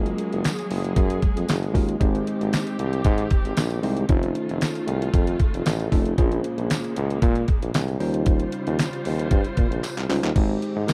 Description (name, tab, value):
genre	early-eighties boogie funk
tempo	115 BPM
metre	4/4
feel	straight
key	Ab major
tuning	A4 = 442 Hz
part	tine electric piano	accompaniment	0.0-10.9 s	G3 to C5	-29 LUFS	equal	none
part	warm studio string section	sustained chords	0.0-10.9 s	Bb2 to C5	-34 LUFS	equal	none
part	clear tuba	bass	0.0-10.9 s	F1 to Bb2	-28 LUFS	equal	none
part	detuned 8-bit digital drum machine	drums	0.1-10.9 s	crash cymbal, handclaps, hi-hat, kick drum, snare drum	-25 LUFS	equal	overdrive
part	tambourine	percussion	0.5-10.9 s	none	-40 LUFS	equal	none
room	studio ambience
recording	dry, close 1970s-style studio recording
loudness	-23 LUFS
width	mono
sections	0.0-10.4 A section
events	drum fill 9.8-10.4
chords	0.0 Gbmaj9; 2.0 Abmaj7; 4.1 F7b13; 6.2 Bbm9; 8.0 Eb13; 10.4 Abmaj7